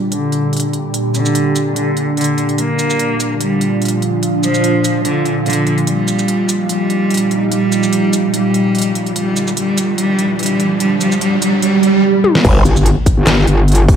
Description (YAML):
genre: heavy wobble dubstep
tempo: 146 BPM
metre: 4/4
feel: swing 54% on 16ths, half-time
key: G minor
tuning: A4 = 440 Hz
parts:
  - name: clear cello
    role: melody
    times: 0.0-12.0 s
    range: D3 to Bb3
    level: -16 LUFS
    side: equal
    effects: low-pass filter, dub echo
  - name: evolving wavetable pad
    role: sustained chords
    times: 0.0-14.0 s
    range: Bb2 to G4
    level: -18 LUFS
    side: right 1 dB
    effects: chorus, built-in reverb, sidechain pumping
  - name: dubstep drum kit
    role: drums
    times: 0.1-14.0 s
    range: crash cymbal, handclaps, hi-hat, shaker, snare drum, toms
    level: -19 LUFS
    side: left 1 dB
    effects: small room reverb
  - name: riser, swell and impact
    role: sound effects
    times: 9.3-14.0 s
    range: none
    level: -19 LUFS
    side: right 3 dB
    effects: none
  - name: growl bass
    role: bass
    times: 12.4-12.6 s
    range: G1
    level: -12 LUFS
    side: equal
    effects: chorus, overdrive
  - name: electronic kick drum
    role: drums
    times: 12.4-14.0 s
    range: none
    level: -12 LUFS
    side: equal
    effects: small room reverb
  - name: metallic wobble bass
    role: bass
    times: 12.7-14.0 s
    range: G1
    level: -11 LUFS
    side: left 1 dB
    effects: chorus, overdrive
room: light reverb, digital ambience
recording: dark, warm production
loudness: -12 LUFS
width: side -8 dB against mid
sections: 0.0-12.4 A section; 12.4-14.0 B section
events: build-up 0.0-12.4; riser 9.3-12.0; swell 11.6-12.4; drum fill 12.2; drop 12.4-14.0; impact 12.4-14.0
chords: 0.0 Gm; 2.6 Bb; 5.9 Ebadd9; 9.2 Bb; 12.4 Gmadd9